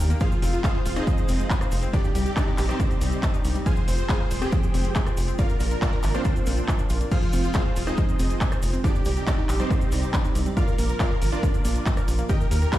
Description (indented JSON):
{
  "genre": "uplifting trance",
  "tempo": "139 BPM",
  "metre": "4/4",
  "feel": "straight",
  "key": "F dorian",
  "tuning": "A4 = 439 Hz",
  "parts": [
    { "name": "supersaw stab", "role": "melody", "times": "0.0-12.8 s", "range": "C4 to Ab5", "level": "-30 LUFS", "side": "right 1 dB", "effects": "sidechain pumping, ping-pong delay" },
    { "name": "lush unison pad", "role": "sustained chords", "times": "0.0-12.8 s", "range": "C3 to D5", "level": "-34 LUFS", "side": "right 1 dB", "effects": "chorus, sidechain pumping" },
    { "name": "tight sequencer bass", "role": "bass", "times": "0.0-12.7 s", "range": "Eb1 to Eb2", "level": "-24 LUFS", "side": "equal", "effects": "sidechain pumping" },
    { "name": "analog pluck", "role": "arpeggios", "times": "0.1-12.8 s", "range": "D3 to C5", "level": "-32 LUFS", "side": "left 1 dB", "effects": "chorus, cassette tape, sidechain pumping, ping-pong delay" },
    { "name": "techno drum kit", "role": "drums", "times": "0.1-12.8 s", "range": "crash cymbal, handclaps, hi-hat, rim click", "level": "-33 LUFS", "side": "equal", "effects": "none" },
    { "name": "cabasa", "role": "percussion", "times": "0.1-12.8 s", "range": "none", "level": "-45 LUFS", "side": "right 4 dB", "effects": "none" },
    { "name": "electronic kick drum", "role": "drums", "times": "0.2-12.8 s", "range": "none", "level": "-24 LUFS", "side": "equal", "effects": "none" }
  ],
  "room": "digital ambience",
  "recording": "played on a big sound system in a bare room, stone room reverb",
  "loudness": "-21 LUFS",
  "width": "side -14 dB against mid",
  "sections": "0.0-12.8 A section",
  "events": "none",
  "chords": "0.2 Fm; 1.9 Cmadd9; 3.7 Fm; 5.4 Bb; 7.1 Fm; 8.8 Cmadd9; 10.6 Bb",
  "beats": "| 0.21 0.64 1.07 1.50 | 1.94 2.37 2.80 3.23 | 3.66 4.09 4.53 4.96 | 5.39 5.82 6.25 6.68 | 7.12 7.55 7.98 8.41 | 8.84 9.27 9.71 10.14 | 10.57 11.00 11.43 11.86 | 12.29 12.73"
}